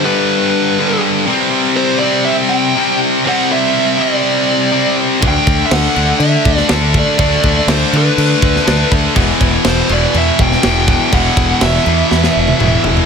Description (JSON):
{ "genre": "heavy metal", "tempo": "122 BPM", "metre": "4/4", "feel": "straight", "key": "E minor", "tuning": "A4 = 440 Hz", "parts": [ { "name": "high-gain lead guitar", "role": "melody", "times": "0.0-12.8 s", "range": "B4 to G5", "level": "-17 LUFS", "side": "right 1 dB", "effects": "distortion, tape echo" }, { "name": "heavy high-gain guitar", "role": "riff", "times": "0.0-13.1 s", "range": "E2 to D4", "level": "-16 LUFS", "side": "right 13 dB", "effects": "distortion" }, { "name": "tight distorted guitar", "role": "riff", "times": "0.0-13.1 s", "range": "E2 to D4", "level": "-16 LUFS", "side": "left 15 dB", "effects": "distortion" }, { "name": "growling fingered electric bass", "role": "bass", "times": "5.2-13.0 s", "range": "E1 to D3", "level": "-16 LUFS", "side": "equal", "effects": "overdrive" }, { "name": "tight metal drum kit", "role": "drums", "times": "5.2-13.1 s", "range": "crash cymbal, kick drum, snare drum, toms", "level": "-17 LUFS", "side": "equal", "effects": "none" } ], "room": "studio reverb", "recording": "none", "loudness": "-10 LUFS", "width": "side -6 dB against mid", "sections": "0.0-13.1 A section", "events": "drum fill 12.1-13.1", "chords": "0.0 G; 1.3 C5; 5.2 D5; 9.2 E5", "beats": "0.30 0.79 | 1.28 1.78 2.27 2.76 | 3.26 3.75 4.24 4.73 | 5.22 5.72 6.21 6.70 | 7.19 7.69 8.18 8.67 | 9.16 9.65 10.14 10.63 | 11.13 11.62 12.11 12.60" }